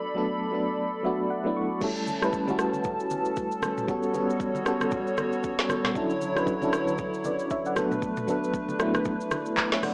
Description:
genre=amapiano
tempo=116 BPM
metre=4/4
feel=swing 58% on 16ths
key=B minor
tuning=A4 = 440 Hz
part: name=FM electric piano with tremolo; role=accompaniment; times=0.0-9.9 s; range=F#3 to C#6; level=-30 LUFS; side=equal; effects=none
part: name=hollow soft pad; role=sustained chords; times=0.0-9.9 s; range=D3 to B5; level=-33 LUFS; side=equal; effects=chorus
part: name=afro-pop drum kit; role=drums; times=1.8-9.9 s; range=crash cymbal, handclaps, hi-hat, kick drum, rim click, shaker, snare drum, toms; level=-33 LUFS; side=equal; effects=none
part: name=congas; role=percussion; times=2.1-9.9 s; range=none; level=-44 LUFS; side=equal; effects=none
room=light reverb, digital ambience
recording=small speaker sound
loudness=-28 LUFS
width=mono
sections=0.0-1.8 A section; 1.8-9.9 B section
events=break 0.0-1.8; FM electric piano fill 0.8-1.8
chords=0.0 Bm7; 1.8 A7; 3.9 Gmaj9#11; 6.0 Dmaj9; 7.8 Bm7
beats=0.26 0.78 1.30 | 1.81 2.33 2.85 3.37 | 3.88 4.40 4.92 5.43 | 5.95 6.47 6.99 7.50 | 8.02 8.54 9.06 9.57

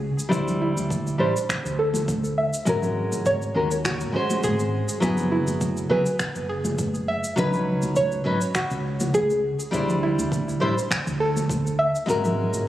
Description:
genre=sunset chillout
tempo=102 BPM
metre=4/4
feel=swing 54% on 16ths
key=unclear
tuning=A4 = 440 Hz
part: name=mellow fretless electric bass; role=bass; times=0.0-12.7 s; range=F#1 to D#2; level=-28 LUFS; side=right 1 dB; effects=none
part: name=electronic shaker and finger snaps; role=drums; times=0.2-12.6 s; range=none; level=-31 LUFS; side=equal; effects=none
part: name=nylon-string guitar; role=accompaniment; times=0.3-12.7 s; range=F#3 to C5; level=-25 LUFS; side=left 1 dB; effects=auto-pan, low-pass filter, tape echo
part: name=electronic kick drum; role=drums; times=0.3-12.2 s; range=none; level=-30 LUFS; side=equal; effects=overdrive
part: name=congas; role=percussion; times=0.5-12.6 s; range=none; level=-31 LUFS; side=left 1 dB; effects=none
part: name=soft round pluck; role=arpeggios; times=0.6-12.1 s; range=E4 to E5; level=-26 LUFS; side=right 1 dB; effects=chorus, tape echo
room=moderate plate reverb, RT60 2.5 s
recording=recorded on a phone in the room, club reverb, compression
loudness=-21 LUFS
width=side -13 dB against mid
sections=0.0-12.7 A section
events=none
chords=0.3 D9sus4; 2.7 G#9sus4; 5.0 F#9sus4; 7.4 C#9sus4; 9.7 D9sus4; 12.1 G#9sus4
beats=| 0.32 0.90 1.49 2.08 | 2.67 3.26 3.85 4.43 | 5.02 5.61 6.20 6.79 | 7.38 7.96 8.55 9.14 | 9.73 10.32 10.90 11.49 | 12.08 12.67

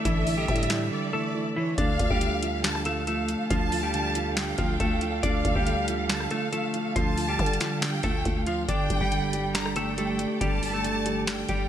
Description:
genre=hip hop, trap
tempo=139 BPM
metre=4/4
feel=half-time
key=D minor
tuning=A4 = 439 Hz
part: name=clean electric guitar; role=melody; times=0.0-11.7 s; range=E3 to D5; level=-30 LUFS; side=left 1 dB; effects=low-pass filter, ping-pong delay
part: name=felt-muted upright piano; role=accompaniment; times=0.0-11.7 s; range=D3 to G3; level=-33 LUFS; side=right 6 dB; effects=low-pass filter
part: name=dark symphonic string section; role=sustained chords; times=0.0-11.7 s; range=D3 to F5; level=-35 LUFS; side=right 4 dB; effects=none
part: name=warm symphonic violin section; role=second line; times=0.1-11.7 s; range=C#5 to Bb5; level=-32 LUFS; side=equal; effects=ping-pong delay
part: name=growling 808-style bass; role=bass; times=0.1-11.7 s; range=G1 to D3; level=-31 LUFS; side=left 1 dB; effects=none
part: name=booming analog drum machine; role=drums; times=0.1-11.7 s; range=finger snaps, hi-hat, kick drum, rim click, snare drum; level=-29 LUFS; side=left 1 dB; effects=vintage 12-bit sampler grit
room=light reverb, small room ambience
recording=bright 1980s-style digital production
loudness=-24 LUFS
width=side -10 dB against mid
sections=0.0-1.8 A section; 1.8-11.7 A section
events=break 0.9-1.8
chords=0.0 Asus4; 1.8 Dm; 8.7 G5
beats=| 0.05 0.48 0.92 1.35 | 1.78 2.21 2.64 3.07 | 3.51 3.94 4.37 4.80 | 5.23 5.66 6.10 6.53 | 6.96 7.39 7.82 8.25 | 8.69 9.12 9.55 9.98 | 10.41 10.84 11.28

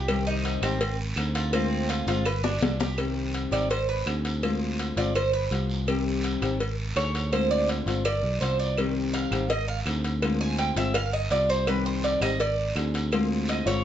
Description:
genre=latin, Cuban son and guajira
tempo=166 BPM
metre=4/4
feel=straight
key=C harmonic minor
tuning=A4 = 445 Hz
part: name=nylon-string guitar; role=accompaniment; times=0.0-13.8 s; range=C3 to Ab4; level=-30 LUFS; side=left 4 dB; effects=none
part: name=Cuban tres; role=arpeggios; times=0.0-13.8 s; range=C4 to Ab5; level=-28 LUFS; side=right 3 dB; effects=none
part: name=picked electric bass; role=bass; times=0.0-13.8 s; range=G1 to D2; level=-28 LUFS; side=right 1 dB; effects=none
part: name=claves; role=percussion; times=0.1-13.3 s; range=none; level=-37 LUFS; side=right 4 dB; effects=none
part: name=cowbell and bongos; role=percussion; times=0.1-13.8 s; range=none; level=-32 LUFS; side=left 2 dB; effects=none
part: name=guiro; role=percussion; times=0.1-13.8 s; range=none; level=-38 LUFS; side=right 2 dB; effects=none
room=moderate studio reverb, RT60 0.7 s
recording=nothing above 7.9 kHz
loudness=-24 LUFS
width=side -10 dB against mid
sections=0.0-3.0 A section; 3.0-13.8 B section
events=drum fill 2.4-3.0; Cuban tres solo 3.0-13.8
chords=0.1 Cm; 0.8 Ab; 1.5 Dm7b5; 2.3 G7; 3.0 Cm; 3.7 Ab; 4.4 Dm7b5; 5.2 G7; 5.9 Cm; 6.6 Ab5; 7.3 Dm7b5; 8.1 G7; 8.8 Cm; 9.5 Ab; 10.2 Dm7b5; 10.9 G7; 11.7 Cm; 12.4 Ab; 13.1 Dm7b5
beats=| 0.09 0.45 0.81 1.17 | 1.53 1.90 2.26 2.62 | 2.98 3.34 3.71 4.07 | 4.43 4.79 5.15 5.51 | 5.88 6.24 6.60 6.96 | 7.33 7.69 8.05 8.41 | 8.78 9.14 9.50 9.86 | 10.22 10.59 10.95 11.31 | 11.67 12.04 12.40 12.76 | 13.12 13.49

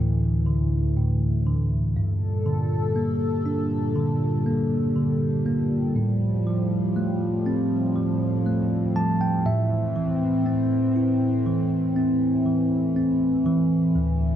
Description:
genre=pop ballad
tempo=60 BPM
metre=4/4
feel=straight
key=unclear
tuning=A4 = 440 Hz
part: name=bell-like tine electric piano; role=accompaniment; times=0.0-14.4 s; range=D2 to A5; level=-22 LUFS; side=equal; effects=none
part: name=chorused pulse-width pad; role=sustained chords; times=0.0-14.4 s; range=D2 to A4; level=-26 LUFS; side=left 1 dB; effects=none
room=wet plate reverb, RT60 2.5 s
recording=dark, warm production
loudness=-21 LUFS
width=side -10 dB against mid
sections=0.0-14.4 A section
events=tine electric piano fill 8.5-10.0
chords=0.0 Dsus2; 2.0 Gmadd9; 6.0 Fadd9/A; 9.5 Am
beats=0.96 | 1.96 2.96 3.96 4.96 | 5.96 6.96 7.96 8.96 | 9.96 10.96 11.96 12.96 | 13.96

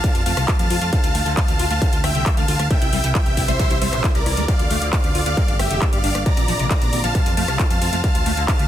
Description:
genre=uplifting trance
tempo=135 BPM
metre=4/4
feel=straight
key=D minor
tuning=A4 = 441 Hz
part: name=big supersaw lead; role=melody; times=0.0-8.7 s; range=G4 to Bb5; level=-23 LUFS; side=equal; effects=sidechain pumping, tape echo
part: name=rich studio string section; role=sustained chords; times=0.0-8.7 s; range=C3 to G4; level=-32 LUFS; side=equal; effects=sidechain pumping
part: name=liquid acid bass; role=arpeggios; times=0.0-8.7 s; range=C3 to G4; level=-28 LUFS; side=left 1 dB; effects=phaser, wide subtle chorus, sidechain pumping
part: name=fat analog bass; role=bass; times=0.0-8.7 s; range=F1 to F2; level=-23 LUFS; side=equal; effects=sidechain pumping
part: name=electronic kick drum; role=drums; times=0.0-8.6 s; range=none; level=-19 LUFS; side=equal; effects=distortion, studio reverb
part: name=techno drum kit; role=drums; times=0.0-8.7 s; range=handclaps, hi-hat, rim click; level=-27 LUFS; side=left 1 dB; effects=studio reverb, sidechain pumping on hats
room=digital ambience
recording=dense, heavily limited modern master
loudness=-16 LUFS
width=side -11 dB against mid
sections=0.0-8.7 A section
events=none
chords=0.0 F; 0.9 Dm; 2.7 C; 4.5 Dm; 5.4 Gmadd9; 6.3 Bbadd9; 7.2 F; 8.0 Dm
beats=0.04 0.48 | 0.93 1.37 1.82 2.26 | 2.71 3.15 3.59 4.04 | 4.48 4.93 5.37 5.82 | 6.26 6.71 7.15 7.59 | 8.04 8.48

